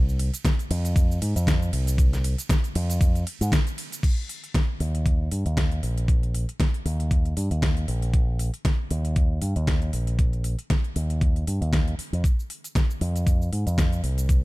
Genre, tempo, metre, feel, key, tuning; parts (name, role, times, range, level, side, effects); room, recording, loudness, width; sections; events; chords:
nu-disco, nu disco; 117 BPM; 4/4; swing 56% on 16ths; Eb major; A4 = 440 Hz
fingered electric bass with an envelope filter; bass; 0.0-14.4 s; Bb1 to Ab2; -24 LUFS; equal; tube saturation
pop drum kit; drums; 0.1-14.4 s; cabasa, crash cymbal, hi-hat, ride cymbal, snare drum; -30 LUFS; equal
electronic kick drum; drums; 0.4-14.4 s; -22 LUFS; equal
little or no reverb; -22 LUFS; side -20 dB against mid
0.0-4.0 A section; 4.0-14.4 B section
drop 0.0-4.0